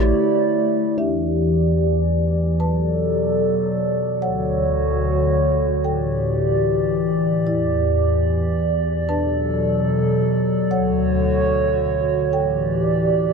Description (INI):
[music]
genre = hip hop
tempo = free time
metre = none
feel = none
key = E dorian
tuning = A4 = 440 Hz
[part]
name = warbly tape-like pad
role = sustained chords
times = 0.0-13.3 s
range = D2 to D5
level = -18 LUFS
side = equal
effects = chorus, built-in reverb, low-pass filter
[part]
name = marimba with soft mallets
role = texture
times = 0.0-13.3 s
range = A3 to A5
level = -30 LUFS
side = left 1 dB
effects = none
[sound]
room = moderate studio ambience, RT60 0.5 s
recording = dark, warm production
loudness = -17 LUFS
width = side -5 dB against mid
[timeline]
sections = 1.0-13.3 A section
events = filter sweep on ambient pad 1.0-13.3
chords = 0.0 A7sus4; 1.0 Em7; 2.6 Bm7; 4.2 Dmaj7; 5.8 A7sus4; 7.5 Em7; 9.1 Bm7; 10.7 Dmaj7; 12.3 A7sus4